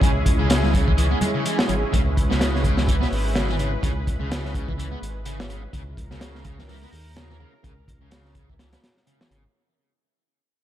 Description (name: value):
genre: breakbeat, breaks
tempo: 126 BPM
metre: 4/4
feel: swing 57% on 16ths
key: C# dorian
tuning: A4 = 440 Hz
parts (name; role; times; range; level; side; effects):
- lush unison pad; sustained chords; 0.0-9.5 s; G#3 to B4; -29 LUFS; right 1 dB; chorus, vintage 12-bit sampler grit, sidechain pumping
- distorted electric guitar; riff; 0.0-9.4 s; C#3 to B3; -29 LUFS; equal; distortion, vintage 12-bit sampler grit, low-pass filter, digital delay
- dark detuned saw bass; bass; 0.0-9.5 s; G#1 to D#2; -25 LUFS; equal; tube saturation
- crunchy breakbeat drum kit; drums; 0.0-9.4 s; hi-hat, kick drum, snare drum; -23 LUFS; equal; none
- congas; percussion; 0.6-1.8 s; none; -30 LUFS; right 2 dB; none
room: studio reverb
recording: dark, warm production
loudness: -19 LUFS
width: side -12 dB against mid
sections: 0.0-9.5 A section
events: fade-out 0.0-9.5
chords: 0.0 C#m7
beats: | 0.02 0.50 0.97 1.45 | 1.93 2.40 2.88 3.35 | 3.83 4.31 4.78 5.26 | 5.74 6.21 6.69 7.16 | 7.64 8.12 8.59 9.07